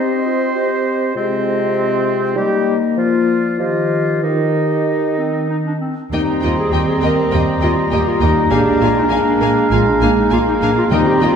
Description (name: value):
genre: quick classical-period movement for symphony orchestra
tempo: 98 BPM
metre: 4/4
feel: uneven beats, rubato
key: Eb major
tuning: A4 = 439 Hz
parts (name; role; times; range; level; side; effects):
- concert flute; second line; 0.0-11.4 s; D5 to Bb5; -23 LUFS; left 1 dB; none
- dark clarinet; second line; 0.0-11.4 s; C4 to Bb4; -21 LUFS; left 1 dB; none
- warm oboe; second line; 0.0-11.4 s; C4 to F5; -25 LUFS; right 3 dB; none
- dark bassoon; accompaniment; 0.0-11.4 s; C3 to C4; -20 LUFS; right 1 dB; none
- dark French horn section; sustained chords; 0.0-11.4 s; Eb3 to Ab4; -22 LUFS; left 4 dB; none
- warm studio violin section; melody; 6.1-11.3 s; G5 to Ab5; -28 LUFS; left 4 dB; none
- warm studio violin section; second line; 6.1-11.3 s; Eb5 to F5; -28 LUFS; left 3 dB; none
- rich studio viola section; accompaniment; 6.1-11.3 s; Bb3; -25 LUFS; equal; none
- rich studio cello section; bass; 6.1-11.4 s; Ab3 to D4; -21 LUFS; right 4 dB; none
- rich studio double bass section; bass; 6.1-11.3 s; Bb1 to Eb2; -20 LUFS; right 1 dB; none
- timpani; percussion; 10.9-11.4 s; Eb3; -20 LUFS; equal; none
room: wet scoring stage reverb, RT60 1.6 s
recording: heard from further back in the room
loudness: -14 LUFS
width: side -7 dB against mid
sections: 0.0-6.1 A section; 6.1-11.4 B section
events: none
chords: 0.0 Cm; 1.2 Fm7/C; 2.4 Eb/G; 3.0 Bb/F; 3.6 Eb; 8.5 Bb7